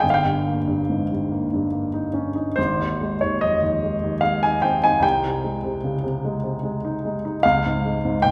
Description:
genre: classical, romantic nocturne for solo piano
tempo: 73 BPM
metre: 3/4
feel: uneven beats, rubato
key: Ab major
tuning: A4 = 441 Hz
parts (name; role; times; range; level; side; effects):
- warm baby grand piano; solo; 0.0-8.3 s; G1 to Ab5; -22 LUFS; equal; none
room: wet recital hall reverb, RT60 1.6 s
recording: recorded in a church or concert hall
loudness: -22 LUFS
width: mono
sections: 0.0-8.3 A section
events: none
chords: 0.0 Eb7/G; 2.6 Ab; 5.0 Ab/C; 7.4 Db

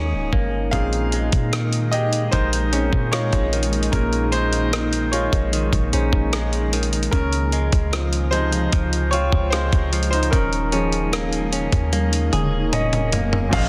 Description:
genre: contemporary R&B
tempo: 75 BPM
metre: 4/4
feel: straight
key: Bb minor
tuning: A4 = 440 Hz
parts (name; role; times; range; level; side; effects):
- clear concert grand piano; accompaniment; 0.0-13.7 s; Bb2 to Ab5; -27 LUFS; equal; none
- ethereal airy pad; sustained chords; 0.0-13.7 s; Db3 to F4; -33 LUFS; equal; ensemble chorus, built-in reverb, sidechain pumping
- direct-recorded clean electric guitar; arpeggios; 0.0-13.7 s; Bb2 to Ab4; -29 LUFS; equal; tape echo
- soft 808-style bass; bass; 0.0-13.7 s; Db1 to Bb2; -25 LUFS; equal; none
- dusty soul sampler-style drum kit; drums; 0.3-13.7 s; crash cymbal, hi-hat, kick drum, rim click, toms; -25 LUFS; equal; none
- swell; sound effects; 12.3-13.5 s; none; -37 LUFS; equal; none
- warm grand piano; melody; 12.7-13.7 s; Eb5 to F5; -27 LUFS; equal; tape echo
room: digital ambience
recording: dense, heavily limited modern master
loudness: -20 LUFS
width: mono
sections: 0.0-13.5 A section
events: break 0.0-0.7; grand piano solo 0.0-13.5; drum fill 11.9-13.5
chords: 0.0 Eb7sus4; 0.7 Bbm11; 7.1 Dbmaj7; 10.3 Eb7sus4

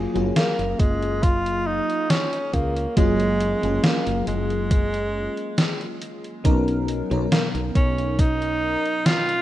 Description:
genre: vaporwave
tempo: 69 BPM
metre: 4/4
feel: straight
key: F# major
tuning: A4 = 440 Hz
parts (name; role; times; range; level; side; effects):
- FM electric piano with soft pad layer; accompaniment; 0.0-9.4 s; B2 to A#4; -26 LUFS; left 1 dB; phaser, analog chorus, tape echo
- woody fretless electric bass; bass; 0.0-8.7 s; F#1 to C#2; -26 LUFS; equal; none
- gated 80s digital drum machine; drums; 0.2-9.4 s; hi-hat, snare drum; -24 LUFS; equal; gated reverb, gated reverb snare
- warm tenor saxophone; melody; 0.4-9.4 s; G#3 to E#4; -25 LUFS; right 1 dB; tape echo
- electronic kick drum; drums; 0.8-8.4 s; none; -20 LUFS; equal; none
room: light reverb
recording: rough home demo mix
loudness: -20 LUFS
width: side -14 dB against mid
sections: 0.0-9.4 A section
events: none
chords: 0.0 F#maj9; 6.5 Bmaj9

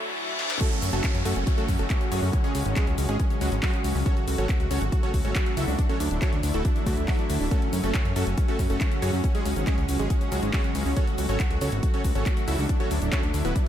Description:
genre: uplifting trance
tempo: 139 BPM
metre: 4/4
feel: straight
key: F# minor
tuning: A4 = 440 Hz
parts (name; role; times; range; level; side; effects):
- lush unison pad; sustained chords; 0.0-13.7 s; C#3 to F#4; -32 LUFS; equal; chorus, sidechain pumping
- riser, reverse cymbal and downlifter; sound effects; 0.0-4.1 s; none; -34 LUFS; left 2 dB; none
- house drum kit; drums; 0.4-13.6 s; crash cymbal, handclaps, hi-hat, shaker, snare drum; -35 LUFS; left 1 dB; high-pass filter on hats, small room ambience, high-pass filter on perc, high-pass filter on snare, high-pass filter on cymbals
- supersaw stab; melody; 0.6-13.6 s; F#3 to E5; -30 LUFS; right 1 dB; sidechain pumping, tape echo
- electronic kick drum; drums; 0.6-13.6 s; none; -25 LUFS; equal; high-pass filter on kick, small room ambience
- fat analog bass; bass; 0.8-13.5 s; D1 to F#2; -27 LUFS; equal; sidechain pumping
room: digital ambience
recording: high-pass filter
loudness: -22 LUFS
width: side -10 dB against mid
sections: 0.6-13.7 A section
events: break 0.0-0.6; riser 0.0-0.6; reverse cymbal 0.0-0.6; drum fill 0.4; drop 0.6-13.7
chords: 0.0 Dadd9; 0.6 F#m; 2.3 C#sus4; 4.1 F#m; 5.8 Dadd9; 7.5 F#m; 9.2 C#sus4; 11.0 F#m; 12.7 Dadd9

